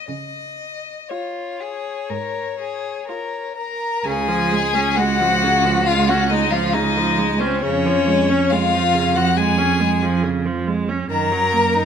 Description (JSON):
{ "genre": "classical, slow romantic movement for string quartet", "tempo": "58-71 BPM", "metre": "4/4", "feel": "rubato", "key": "Db major", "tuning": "A4 = 439 Hz", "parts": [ { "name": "rich violin", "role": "melody", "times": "0.0-11.8 s", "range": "C5 to Bb5", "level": "-22 LUFS", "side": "left 7 dB", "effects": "none" }, { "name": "rich cello", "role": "bass", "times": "0.1-11.8 s", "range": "Db2 to Db3", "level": "-22 LUFS", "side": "right 5 dB", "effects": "none" }, { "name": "rich violin", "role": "second line", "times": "1.1-11.8 s", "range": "C4 to Bb4", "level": "-22 LUFS", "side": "left 2 dB", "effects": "none" }, { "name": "rich viola", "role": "accompaniment", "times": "1.1-11.8 s", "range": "Db3 to F4", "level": "-23 LUFS", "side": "right 4 dB", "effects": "none" } ], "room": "moderate recital hall reverb, RT60 1.5 s", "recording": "close, detailed microphones", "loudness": "-17 LUFS", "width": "side -8 dB against mid", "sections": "0.0-4.1 A section; 4.1-11.8 B section", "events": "none", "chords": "0.1 Db; 7.6 Db/F; 11.1 Ebm/Gb", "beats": "| 0.09 1.10 2.10 3.07 | 4.06 4.97 5.86 6.73 | 7.62 8.51 9.37 10.23 | 11.10" }